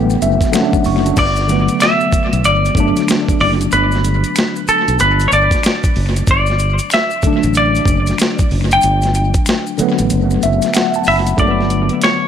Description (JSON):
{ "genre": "R&B, neo-soul", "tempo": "94 BPM", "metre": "4/4", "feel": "swing 62% on 16ths", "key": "G major", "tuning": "A4 = 441 Hz", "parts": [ { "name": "semi-hollow electric guitar", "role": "melody", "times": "0.0-12.3 s", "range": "G4 to G5", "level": "-16 LUFS", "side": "left 1 dB", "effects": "tape echo" }, { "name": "tine electric piano", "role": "accompaniment", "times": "0.0-12.3 s", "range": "D3 to C#6", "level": "-17 LUFS", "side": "equal", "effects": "overdrive, medium stereo tremolo, tape echo" }, { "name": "fingered electric bass", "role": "bass", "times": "0.0-11.9 s", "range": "F#1 to B1", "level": "-17 LUFS", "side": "equal", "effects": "none" }, { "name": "maracas and finger snaps", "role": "percussion", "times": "0.1-11.4 s", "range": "none", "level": "-29 LUFS", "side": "left 6 dB", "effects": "tape echo" }, { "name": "dusty soul sampler-style drum kit", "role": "drums", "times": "0.2-12.2 s", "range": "crash cymbal, hi-hat, kick drum, snare drum", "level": "-18 LUFS", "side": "equal", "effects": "overdrive, tape echo" } ], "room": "light reverb", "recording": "echo-heavy mix", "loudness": "-12 LUFS", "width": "side -9 dB against mid", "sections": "0.0-1.2 A section; 1.2-11.4 B section", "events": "tine electric piano fill 0.0-1.2, 10.1-11.4; kick muted 10.1-11.4", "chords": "0.0 Gmaj9", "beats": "0.53 | 1.17 1.80 2.44 3.08 | 3.72 4.36 5.00 5.63 | 6.27 6.91 7.55 8.19 | 8.83 9.46 10.10 10.74 | 11.38 12.02" }